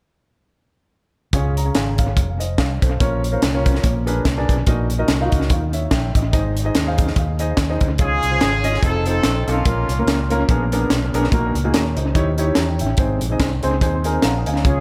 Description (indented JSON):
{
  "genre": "uptempo gospel",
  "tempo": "144 BPM",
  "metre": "4/4",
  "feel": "swing 56% on 8ths",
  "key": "Db major",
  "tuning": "A4 = 440 Hz",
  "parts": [
    { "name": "warm baby grand piano", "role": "accompaniment", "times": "1.3-14.8 s", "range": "Ab2 to C6", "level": "-25 LUFS", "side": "equal", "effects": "analog delay" },
    { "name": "fingered electric bass", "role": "bass", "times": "1.3-14.8 s", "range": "F1 to Fb2", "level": "-24 LUFS", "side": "equal", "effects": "none" },
    { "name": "crisp fusion drum kit", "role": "drums", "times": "1.3-14.8 s", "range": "hi-hat, kick drum, snare drum", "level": "-22 LUFS", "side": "equal", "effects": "analog delay" },
    { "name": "clear horn section", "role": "melody", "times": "8.0-10.3, 14.7-14.8 s", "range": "Bb3 to A4", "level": "-25 LUFS", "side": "equal", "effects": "analog delay" }
  ],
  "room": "light reverb, small room ambience",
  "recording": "echo-heavy mix",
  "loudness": "-19 LUFS",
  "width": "mono",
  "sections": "1.3-8.0 A section; 8.0-14.8 B section",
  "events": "grand piano fill 13.4-14.6",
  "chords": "1.3 Db; 2.2 F5; 3.0 Bbm; 3.8 Bb7b9; 4.7 Ebm/Bb; 5.5 Eb5; 6.3 Ab; 8.0 Db; 8.8 F7; 9.7 Bbm; 10.5 Bb7b9; 11.3 Ebm/Bb; 12.2 Eb7b9; 13.0 Ab",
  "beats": "| 1.33 1.75 2.17 2.59 | 3.00 3.42 3.84 4.25 | 4.67 5.09 5.50 5.92 | 6.34 6.75 7.17 7.58 | 8.00 8.41 8.83 9.25 | 9.66 10.08 10.49 10.91 | 11.32 11.74 12.15 12.57 | 12.98 13.40 13.82 14.23 | 14.65"
}